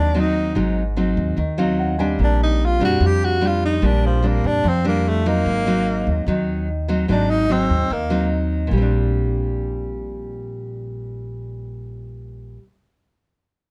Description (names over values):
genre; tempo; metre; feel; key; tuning
bossa nova; 147 BPM; 4/4; straight; Bb major; A4 = 440 Hz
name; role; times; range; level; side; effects
breathy tenor saxophone; melody; 0.0-8.3 s; F3 to G4; -24 LUFS; equal; none
dark baby grand piano; accompaniment; 0.0-2.2 s; Gb4 to Eb6; -34 LUFS; equal; none
nylon-string guitar; accompaniment; 0.0-12.7 s; Ab2 to Eb4; -24 LUFS; equal; none
upright bass; bass; 0.0-12.6 s; Ab1 to F2; -25 LUFS; equal; none
room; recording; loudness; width
light reverb; none; -20 LUFS; mono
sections
0.0-8.7 A section; 8.7-12.0 B section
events
tenor saxophone solo 0.0-8.7; grand piano fill 1.4-2.2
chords
0.0 Ab7; 2.2 Bb69; 5.4 Ab7; 8.7 Bb69